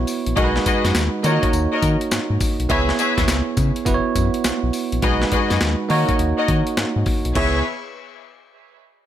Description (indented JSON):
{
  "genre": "R&B, new jack swing",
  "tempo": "103 BPM",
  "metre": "4/4",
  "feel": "swing 65% on 16ths",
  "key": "C# dorian",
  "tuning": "A4 = 437 Hz",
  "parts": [
    { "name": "bell-like tine electric piano", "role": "accompaniment", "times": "0.0-7.6 s", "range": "G#3 to C#5", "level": "-22 LUFS", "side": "right 4 dB", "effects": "none" },
    { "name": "round analog bass", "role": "bass", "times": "0.0-7.6 s", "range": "F#1 to D#3", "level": "-21 LUFS", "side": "left 1 dB", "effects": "none" },
    { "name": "breakbeat sampler-style drum kit", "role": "drums", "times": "0.1-7.5 s", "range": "crash cymbal, hi-hat, kick drum, snare drum, tambourine", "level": "-23 LUFS", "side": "left 1 dB", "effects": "none" },
    { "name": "warm symphonic string section", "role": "stabs", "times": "0.4-7.6 s", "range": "F#4 to E5", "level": "-24 LUFS", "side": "left 5 dB", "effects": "ping-pong delay" }
  ],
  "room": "light reverb, digital ambience",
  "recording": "none",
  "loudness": "-17 LUFS",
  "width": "side -11 dB against mid",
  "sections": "0.0-7.4 A section; 7.4-9.1 B section",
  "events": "none",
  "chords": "0.4 B6; 1.2 D#m7; 2.7 C#m7; 3.9 F#7sus4; 5.0 B6; 5.9 D#m7; 7.4 C#m7",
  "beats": "| 0.36 0.95 1.53 2.11 | 2.69 3.28 3.86 4.44 | 5.03 5.61 6.19 6.77 | 7.36"
}